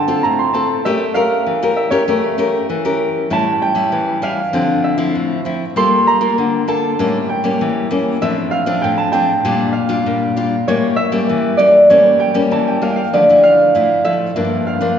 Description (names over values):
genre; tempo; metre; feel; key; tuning
samba; 98 BPM; 4/4; straight; D minor; A4 = 441 Hz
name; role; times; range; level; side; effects
Celtic harp; melody; 0.0-15.0 s; C#5 to C6; -15 LUFS; right 1 dB; none
nylon-string guitar; accompaniment; 0.0-15.0 s; G2 to Bb4; -17 LUFS; left 3 dB; none
room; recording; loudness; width
wet concert hall reverb, RT60 2.0 s; recorded in a church or concert hall, nothing above 7.6 kHz; -13 LUFS; side -8 dB against mid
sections
0.0-13.1 A section; 13.1-15.0 B section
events
none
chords
0.0 Dm7; 0.9 A7b9; 3.3 A7; 4.5 Dm9; 5.8 Gm9; 7.0 A7b9; 8.2 Dm7/A; 9.4 Gm7/Bb; 10.7 A7b9; 13.1 Dmadd9; 14.4 Gm7